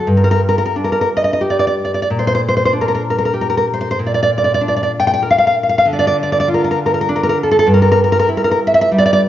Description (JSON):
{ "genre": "romantic piece for solo classical guitar", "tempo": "86-101 BPM", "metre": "3/4", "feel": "rubato", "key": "G minor", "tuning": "A4 = 436 Hz", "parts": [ { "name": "nylon-string guitar", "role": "solo", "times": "0.0-9.3 s", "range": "G2 to G5", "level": "-12 LUFS", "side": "equal", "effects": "none" } ], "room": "moderate recital hall reverb, RT60 1.6 s", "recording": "nothing above 7.5 kHz", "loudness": "-12 LUFS", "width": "side -12 dB against mid", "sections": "0.1-9.3 A section", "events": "none", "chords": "0.1 G5; 2.1 Gm/Bb; 4.0 Bb; 5.9 Dm; 7.7 Gm6", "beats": "| 0.07 0.75 1.41 | 2.05 2.69 3.33 | 3.97 4.60 5.23 | 5.85 6.47 7.08 | 7.68 8.29 8.89" }